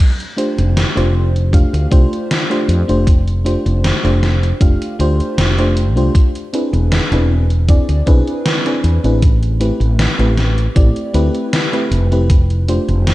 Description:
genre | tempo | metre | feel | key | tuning
vaporwave | 78 BPM | 4/4 | straight | F lydian | A4 = 440 Hz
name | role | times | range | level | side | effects
gated 80s digital drum machine | drums | 0.0-13.1 s | crash cymbal, hi-hat, snare drum | -20 LUFS | equal | gated reverb, gated reverb snare
FM electric piano with soft pad layer | accompaniment | 0.4-13.1 s | A3 to F5 | -18 LUFS | equal | wide subtle chorus, cassette tape, analog delay
woody fretless electric bass | bass | 0.6-13.1 s | E1 to F2 | -14 LUFS | equal | none
electronic kick drum | drums | 1.5-12.5 s | none | -11 LUFS | equal | none
room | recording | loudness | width
digital ambience | cassette tape | -12 LUFS | side -17 dB against mid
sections
0.0-13.1 A section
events
none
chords
0.0 F69; 6.1 E7b13; 9.2 Am9; 12.3 F69

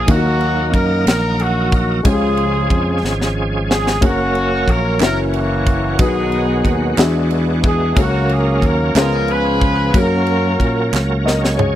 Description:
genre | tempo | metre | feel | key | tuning
slow gospel | 61 BPM (dotted quarters) | 6/8 | straight | F# major | A4 = 438 Hz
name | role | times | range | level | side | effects
clear horn section | melody | 0.0-10.9 s | A#3 to B4 | -20 LUFS | equal | none
warm grand piano | accompaniment | 0.0-11.8 s | B2 to D#5 | -22 LUFS | left 3 dB | none
bright tonewheel organ | sustained chords | 0.0-11.8 s | D#3 to D#5 | -22 LUFS | right 2 dB | slow rotary speaker, overdrive, chorus vibrato
fingered electric bass | bass | 0.0-11.8 s | F#1 to A#2 | -19 LUFS | equal | none
crisp fusion drum kit | drums | 0.1-11.7 s | kick drum, ride cymbal, snare drum, toms | -17 LUFS | equal | none
group handclap | percussion | 5.0-11.2 s | none | -24 LUFS | right 10 dB | none
room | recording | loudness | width
little or no reverb | dry, close 1970s-style studio recording | -14 LUFS | side -12 dB against mid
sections
0.0-11.8 A section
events
drum fill 3.0-4.0, 10.9-11.8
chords
0.1 D#m; 2.1 C#; 4.0 F#; 5.0 F#7; 6.0 B; 7.0 E9; 8.0 F#/C#; 9.0 C#7; 9.9 F#

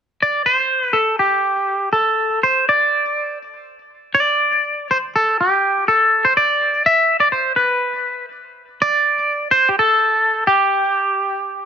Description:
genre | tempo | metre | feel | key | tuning
rock | 123 BPM | 4/4 | straight | unclear | A4 = 440 Hz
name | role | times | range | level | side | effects
twangy electric guitar | melody | 0.2-11.7 s | G4 to E5 | -14 LUFS | equal | phaser
room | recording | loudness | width
moderate studio reverb, RT60 0.8 s | dense, heavily limited modern master | -14 LUFS | side -8 dB against mid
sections
1.0-8.8 A section; 8.8-11.7 B section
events
none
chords
none

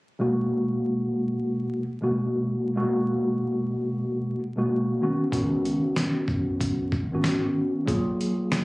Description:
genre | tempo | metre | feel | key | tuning
hip hop, boom-bap hip-hop | 94 BPM | 4/4 | swing 63% on 16ths | G# dorian | A4 = 441 Hz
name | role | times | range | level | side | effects
mellow tine electric piano | accompaniment | 0.2-8.6 s | B2 to G#4 | -24 LUFS | equal | medium stereo tremolo, cassette tape, high-pass filter, low-pass filter
mellow fretless electric bass | bass | 5.3-7.4 s | F#1 to C#2 | -33 LUFS | equal | ensemble chorus
trip hop sampler-style drum kit | drums | 5.3-8.6 s | hi-hat, kick drum, snare drum | -28 LUFS | equal | none
room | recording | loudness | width
moderate studio reverb, RT60 0.5 s | recorded on a phone in the room, club reverb, vinyl crackle, compression | -23 LUFS | side -22 dB against mid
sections
0.2-8.6 A section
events
none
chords
0.2 G#m9; 5.0 C#9sus4; 7.9 F#maj9

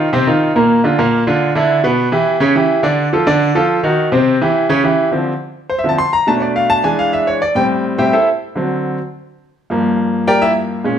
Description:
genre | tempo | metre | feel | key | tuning
latin | 210 BPM | 4/4 | straight | unclear | A4 = 440 Hz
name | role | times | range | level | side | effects
bright concert grand piano | solo | 0.0-11.0 s | G2 to C6 | -12 LUFS | equal | none
room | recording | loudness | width
wet large studio reverb, RT60 1.0 s | heard from further back in the room | -12 LUFS | side -8 dB against mid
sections
0.0-5.1 A section; 5.1-11.0 B section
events
grand piano solo 5.1-11.0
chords
0.0 F5; 0.6 Bb; 1.7 Em7; 2.3 C#dim; 2.8 Dm; 4.0 Cm; 4.6 C#dim; 5.1 Dm7; 6.3 Bm7b5; 6.8 E7; 7.4 Am7; 8.6 D7; 9.7 Gm7

